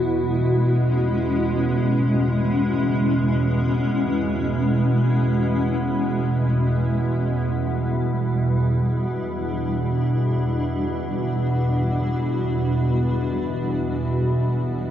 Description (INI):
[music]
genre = dark ambient drone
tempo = free time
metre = none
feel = none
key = E minor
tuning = A4 = 439 Hz
[part]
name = granular cloud pad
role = sustained chords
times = 0.0-14.9 s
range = G3 to F#4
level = -24 LUFS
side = left 1 dB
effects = built-in reverb
[part]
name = organ-like drone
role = drone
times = 0.0-14.9 s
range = E2 to B2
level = -21 LUFS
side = right 1 dB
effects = ensemble chorus, built-in reverb
[sound]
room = wet huge ambient reverb, RT60 8.0 s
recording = dark, warm production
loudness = -19 LUFS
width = side -10 dB against mid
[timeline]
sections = 0.0-14.9 A section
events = fade-out on ambient pad 0.0-14.9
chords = 0.0 C#m; 6.9 Emadd9